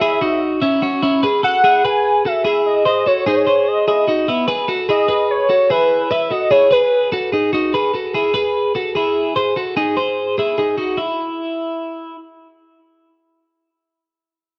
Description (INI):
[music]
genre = indie pop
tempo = 148 BPM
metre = 4/4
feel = straight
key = unclear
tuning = A4 = 440 Hz
[part]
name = warm velvety synth lead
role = melody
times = 0.0-7.3 s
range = B4 to G#5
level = -18 LUFS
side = equal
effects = chorus
[part]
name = twelve-string electric guitar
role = arpeggios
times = 0.0-12.2 s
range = B3 to B#4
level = -19 LUFS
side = equal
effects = none
[sound]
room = moderate echo chamber reverb, RT60 1.6 s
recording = worn, warbling old tape, cassette tape, warbly pitch drift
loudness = -17 LUFS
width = mono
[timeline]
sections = 0.0-7.7 A section; 7.7-11.0 B section; 11.0-14.2 C section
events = none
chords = 0.0 A (rootless); 1.2 Eadd9; 2.9 G#; 4.3 E; 6.1 A5; 6.9 G#m; 7.7 Eadd9; 9.4 G#; 11.0 N.C.